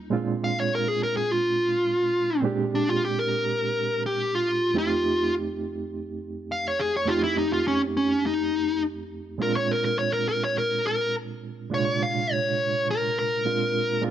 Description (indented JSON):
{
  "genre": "blues",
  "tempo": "104 BPM",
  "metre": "4/4",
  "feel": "straight",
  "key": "Bb mixolydian",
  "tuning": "A4 = 440 Hz",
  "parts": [
    { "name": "barky reed electric piano", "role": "accompaniment", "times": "0.0-14.1 s", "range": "F2 to G4", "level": "-28 LUFS", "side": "right 5 dB", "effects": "overdrive, fast tremolo" },
    { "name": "dark smooth lead guitar", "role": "melody", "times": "0.4-14.0 s", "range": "Db4 to F5", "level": "-24 LUFS", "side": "left 1 dB", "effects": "overdrive" }
  ],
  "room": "moderate echo chamber reverb, RT60 2.0 s",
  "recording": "none",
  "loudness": "-23 LUFS",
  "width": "side -10 dB against mid",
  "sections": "0.0-14.0 A section",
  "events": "lead electric guitar solo 0.0-14.1",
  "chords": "0.1 Bb9; 4.8 F9; 9.4 Bb9",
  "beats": "| 0.12 0.70 1.28 1.86 | 2.44 3.02 3.60 4.18 | 4.76 5.34 5.92 6.50 | 7.08 7.66 8.24 8.81 | 9.39 9.97 10.55 11.13 | 11.71 12.29 12.87 13.45 | 14.03"
}